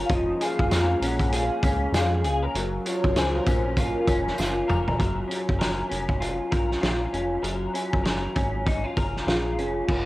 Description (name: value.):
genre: indie pop, bedroom pop.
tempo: 98 BPM.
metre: 4/4.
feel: swing 60% on 16ths.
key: Gb major.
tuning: A4 = 440 Hz.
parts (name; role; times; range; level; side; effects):
electric guitar through a small old amp; accompaniment; 0.0-10.1 s; F3 to Bb4; -27 LUFS; left 1 dB; ensemble chorus, vibrato effect, cassette tape, plate reverb.
phased analog pad; sustained chords; 0.0-5.0 s; Gb3 to Bb4; -36 LUFS; equal; phaser, chorus, cassette tape.
round analog bass; bass; 0.0-10.1 s; F1 to F2; -29 LUFS; equal; none.
soft octave-layered synth lead; melody; 0.1-4.7, 9.3-10.1 s; Ab4 to Gb5; -31 LUFS; equal; phaser, analog chorus, tape echo.
loose indie drum kit; drums; 0.1-10.1 s; crash cymbal, hi-hat, kick drum, snare drum, toms; -26 LUFS; equal; none.
tambourine; percussion; 0.4-4.9 s; none; -44 LUFS; right 2 dB; none.
room: moderate studio reverb, RT60 0.6 s.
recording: home recording on cassette.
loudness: -22 LUFS.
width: side -17 dB against mid.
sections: 0.0-5.0 A section; 5.0-9.9 B section.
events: drum fill 4.4-5.0.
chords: 0.1 Bbm7/F; 2.5 Gbmaj7.